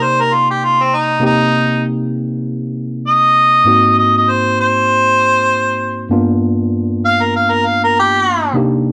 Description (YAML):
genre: blues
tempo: 98 BPM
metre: 4/4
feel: swing 55% on 16ths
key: C minor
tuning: A4 = 440 Hz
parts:
  - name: warm harmonica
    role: melody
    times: 0.0-8.6 s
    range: C4 to F5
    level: -14 LUFS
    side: equal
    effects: overdrive
  - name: tine electric piano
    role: accompaniment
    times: 0.0-8.9 s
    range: G2 to D5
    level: -19 LUFS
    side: equal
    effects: none
room: moderate spring reverb, RT60 1.1 s, small room ambience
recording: none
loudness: -14 LUFS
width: mono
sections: 0.0-8.9 A section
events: harmonica solo 0.0-8.9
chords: 0.0 Cm9; 3.7 Ab7; 6.1 G7#9